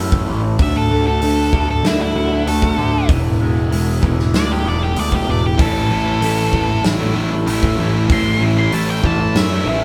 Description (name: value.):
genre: quiet-loud alternative rock.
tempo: 96 BPM.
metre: 4/4.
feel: straight.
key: A major.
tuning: A4 = 440 Hz.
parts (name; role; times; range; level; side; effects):
electric guitar through a small old amp; arpeggios; 0.0-9.8 s; A2 to F#4; -26 LUFS; equal; phaser.
raw garage guitar; riff; 0.0-9.8 s; A2 to F#4; -26 LUFS; equal; overdrive.
fuzz picked electric bass; bass; 0.0-9.8 s; E1 to F#2; -22 LUFS; equal; overdrive.
huge arena drum kit; drums; 0.1-9.5 s; hi-hat, kick drum, snare drum; -22 LUFS; equal; none.
octave-fuzz lead guitar; melody; 0.6-9.7 s; E4 to C6; -24 LUFS; equal; distortion.
heavy high-gain guitar; riff; 5.6-9.8 s; A2 to E4; -26 LUFS; equal; distortion.
room: light reverb.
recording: band playing live in one room.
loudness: -17 LUFS.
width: mono.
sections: 0.0-9.8 A section.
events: lead electric guitar solo 0.0-9.8.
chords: 0.0 A; 0.6 D; 3.1 Eadd9; 5.6 A.